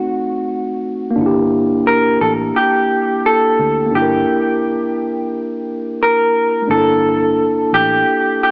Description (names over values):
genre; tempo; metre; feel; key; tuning
lo-fi hip hop; 87 BPM; 4/4; swing 62% on 16ths; G dorian; A4 = 440 Hz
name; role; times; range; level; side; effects
electric guitar through a small old amp; melody; 0.0-8.5 s; F#4 to Bb4; -15 LUFS; equal; low-pass filter, analog delay
mellow tine electric piano; accompaniment; 0.0-8.5 s; A3 to Bb4; -16 LUFS; equal; cassette tape, low-pass filter
vintage muted fingered electric bass; bass; 1.2-8.0 s; G1 to D2; -27 LUFS; equal; none
room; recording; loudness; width
moderate plate reverb, RT60 3.4 s; worn, warbling old tape, cassette tape, warbly pitch drift, AM radio sound; -13 LUFS; side -29 dB against mid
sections
0.0-6.7 A section; 6.7-8.5 B section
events
none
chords
0.0 D7b9 (rootless); 1.2 Gm6; 6.7 Gm69